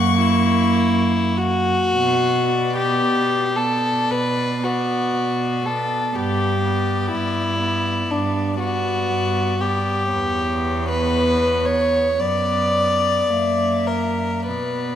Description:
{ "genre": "classical, slow romantic movement for string quartet", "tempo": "49-62 BPM", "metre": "4/4", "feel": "rubato", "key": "B minor", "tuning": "A4 = 440 Hz", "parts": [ { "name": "warm violin", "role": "melody", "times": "0.0-15.0 s", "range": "C#5 to C#6", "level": "-29 LUFS", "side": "left 9 dB", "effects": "none" }, { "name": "rich violin", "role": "second line", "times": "0.0-15.0 s", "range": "D4 to F#5", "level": "-20 LUFS", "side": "left 2 dB", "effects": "none" }, { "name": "warm viola", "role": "accompaniment", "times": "0.0-15.0 s", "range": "A#3 to B3", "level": "-25 LUFS", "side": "right 1 dB", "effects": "none" }, { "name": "clear cello", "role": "bass", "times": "0.0-15.0 s", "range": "E2 to B2", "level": "-24 LUFS", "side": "right 4 dB", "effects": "none" } ], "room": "moderate concert hall reverb, RT60 2.1 s", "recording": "none", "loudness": "-18 LUFS", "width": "side -10 dB against mid", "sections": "0.0-2.0 A section; 2.0-15.0 B section", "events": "none", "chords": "0.0 F#; 2.0 Bm; 6.1 G; 10.1 Em6; 12.2 Bm/F#; 13.3 F#7" }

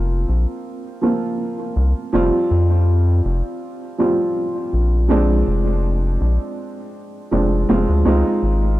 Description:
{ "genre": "trip hop", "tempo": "81 BPM", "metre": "4/4", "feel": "swing 54% on 16ths", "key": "unclear", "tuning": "A4 = 440 Hz", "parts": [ { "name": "dark upright piano", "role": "accompaniment", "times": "0.0-8.8 s", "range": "F3 to F4", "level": "-20 LUFS", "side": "right 1 dB", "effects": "harmonic tremolo, tape echo" }, { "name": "round analog bass", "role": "bass", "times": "0.0-8.8 s", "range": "F1 to F2", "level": "-17 LUFS", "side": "equal", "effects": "tube saturation" } ], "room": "small room ambience", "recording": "dry, gritty hardware recording", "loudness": "-16 LUFS", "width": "side -16 dB against mid", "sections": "0.0-8.8 A section", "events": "none", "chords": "0.0 Bbsus2; 2.1 Fsus2; 5.1 Bb7; 8.1 Dbmaj7" }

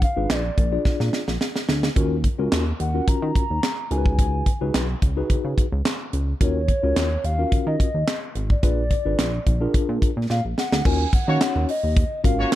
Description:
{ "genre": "early-eighties boogie funk", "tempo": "108 BPM", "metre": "4/4", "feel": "straight", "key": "Eb minor", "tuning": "A4 = 440 Hz", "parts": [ { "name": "hollow clarinet-like synth lead", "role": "melody", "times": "0.0-12.6 s", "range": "Db5 to Bb5", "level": "-28 LUFS", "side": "left 1 dB", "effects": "chorus, slapback echo" }, { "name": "chorused synth bass", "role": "bass", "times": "0.0-12.4 s", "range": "Ab1 to Eb3", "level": "-24 LUFS", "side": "equal", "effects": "none" }, { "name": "tight funk drum kit", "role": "drums", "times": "0.0-12.6 s", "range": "crash cymbal, handclaps, hi-hat, kick drum, snare drum", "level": "-22 LUFS", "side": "equal", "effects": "none" }, { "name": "mellow tine electric piano", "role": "accompaniment", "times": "0.2-12.6 s", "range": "Db4 to D5", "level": "-27 LUFS", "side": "left 2 dB", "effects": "medium stereo tremolo" }, { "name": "mellow horn section", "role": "second line", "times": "11.3-12.5 s", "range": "Bb3 to Db5", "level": "-28 LUFS", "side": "left 1 dB", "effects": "none" } ], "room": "small room reverb", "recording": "dark, warm production", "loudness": "-19 LUFS", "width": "side -14 dB against mid", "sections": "0.0-10.9 A section; 10.9-12.6 B section", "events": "drum fill 0.9-2.0, 10.3-10.9", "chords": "0.0 Bb7b9; 2.0 Ebm7; 3.9 Db7sus4; 6.4 Ebm7; 8.6 Bb7b9; 10.9 Ebm7" }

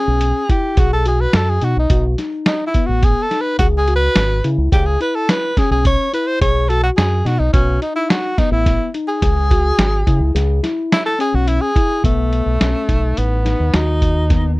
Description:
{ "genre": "progressive instrumental, band music in an uneven meter", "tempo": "106 BPM", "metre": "5/4", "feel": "straight", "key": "unclear", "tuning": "A4 = 437 Hz", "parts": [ { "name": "breathy tenor saxophone", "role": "melody", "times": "0.0-14.6 s", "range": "A3 to C#5", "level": "-19 LUFS", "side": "equal", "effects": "none" }, { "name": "mellow tine electric piano", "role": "arpeggios", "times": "0.0-14.6 s", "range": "B3 to G#4", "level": "-23 LUFS", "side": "left 4 dB", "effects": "none" }, { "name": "fingered electric bass with an envelope filter", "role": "bass", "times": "0.1-14.6 s", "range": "G#1 to C#3", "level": "-17 LUFS", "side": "equal", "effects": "none" }, { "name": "lo-fi sampler-style drum kit", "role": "drums", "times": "0.2-14.4 s", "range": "hi-hat, kick drum, snare drum", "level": "-17 LUFS", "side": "equal", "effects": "none" } ], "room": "little or no reverb", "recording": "dry, close 1970s-style studio recording", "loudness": "-14 LUFS", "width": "side -21 dB against mid", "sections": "0.0-12.0 A section; 12.0-14.6 B section", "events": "tenor saxophone solo 0.0-12.0", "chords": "0.0 C#m7; 0.8 B; 3.6 C#m7; 6.4 B; 9.2 C#m; 12.0 B7" }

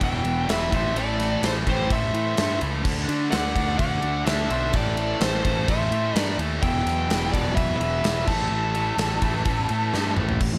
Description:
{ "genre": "hard rock", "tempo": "127 BPM", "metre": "4/4", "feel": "straight", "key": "A dorian", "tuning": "A4 = 439 Hz", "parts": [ { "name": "biting lead guitar", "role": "melody", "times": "0.0-10.1 s", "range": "C5 to A5", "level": "-30 LUFS", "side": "equal", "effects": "overdrive, plate reverb" }, { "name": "octave-fuzz lead guitar", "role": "second line", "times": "0.0-10.1 s", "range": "G4 to E5", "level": "-36 LUFS", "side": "equal", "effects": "distortion, plate reverb" }, { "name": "hollow soft pad", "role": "sustained chords", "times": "0.0-10.6 s", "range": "E3 to E5", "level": "-40 LUFS", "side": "equal", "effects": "none" }, { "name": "cranked stack guitar", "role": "riff", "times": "0.0-10.6 s", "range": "E2 to D4", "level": "-35 LUFS", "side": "equal", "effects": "overdrive" }, { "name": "distorted electric guitar", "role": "riff", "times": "0.0-10.4 s", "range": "E2 to D4", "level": "-33 LUFS", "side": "equal", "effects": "overdrive" }, { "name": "fuzz picked electric bass", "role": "bass", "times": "0.0-10.6 s", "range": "E1 to D3", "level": "-29 LUFS", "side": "equal", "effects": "overdrive" }, { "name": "gated 80s drum kit", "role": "drums", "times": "0.0-10.5 s", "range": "crash cymbal, kick drum, ride cymbal, snare drum, toms", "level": "-29 LUFS", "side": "equal", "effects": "none" } ], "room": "light reverb", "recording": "none", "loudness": "-24 LUFS", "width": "mono", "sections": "0.0-10.4 A section", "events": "drum fill 9.9-10.4", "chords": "0.0 Em; 0.7 Am; 2.9 D; 4.7 Am; 6.6 Em; 8.3 A5" }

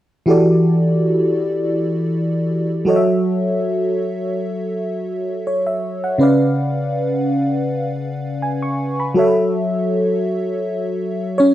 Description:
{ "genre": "R&B", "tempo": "81 BPM", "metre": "4/4", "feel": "swing 54% on 16ths", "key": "E dorian", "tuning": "A4 = 440 Hz", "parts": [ { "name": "FM electric piano with soft pad layer", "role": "accompaniment", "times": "0.3-11.5 s", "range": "C#3 to C#6", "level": "-16 LUFS", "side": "equal", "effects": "chorus, cassette tape" } ], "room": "wet booth ambience, RT60 0.2 s", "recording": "home recording on cassette", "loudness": "-16 LUFS", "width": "side -13 dB against mid", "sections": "0.3-11.5 A section", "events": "none", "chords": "0.3 Em11; 2.9 F#m7; 6.2 C#7b9; 9.2 F#m7" }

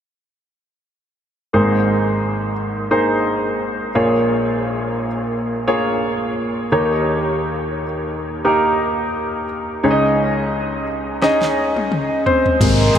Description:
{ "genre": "piano-driven pop", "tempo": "87 BPM", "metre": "4/4", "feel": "swing 56% on 16ths", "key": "Ab major", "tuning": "A4 = 440 Hz", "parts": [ { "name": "clear baby grand piano", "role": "accompaniment", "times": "1.5-13.0 s", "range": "Ab1 to Eb5", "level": "-16 LUFS", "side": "equal", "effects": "wide subtle chorus" }, { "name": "pop drum kit", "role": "drums", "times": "11.2-13.0 s", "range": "crash cymbal, hi-hat, kick drum, snare drum, toms", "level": "-22 LUFS", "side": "equal", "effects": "none" }, { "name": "chorused pulse-width pad", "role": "sustained chords", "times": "12.7-13.0 s", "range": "Bb4 to C6", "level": "-19 LUFS", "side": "equal", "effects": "none" }, { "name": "picked electric bass", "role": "bass", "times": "12.6-13.0 s", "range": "Ab1", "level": "-15 LUFS", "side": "equal", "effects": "none" }, { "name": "downlifter", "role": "sound effects", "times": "12.6-13.0 s", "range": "none", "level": "-22 LUFS", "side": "equal", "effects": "none" } ], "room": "wet huge ambient reverb, RT60 7.8 s", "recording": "dreamy mix soaked in reverb", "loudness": "-16 LUFS", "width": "side -9 dB against mid", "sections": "1.5-12.6 A section", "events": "drum fill 11.2-12.6", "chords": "1.5 Abadd9; 4.0 Bbm7; 6.7 Eb7; 9.8 Dbsus2" }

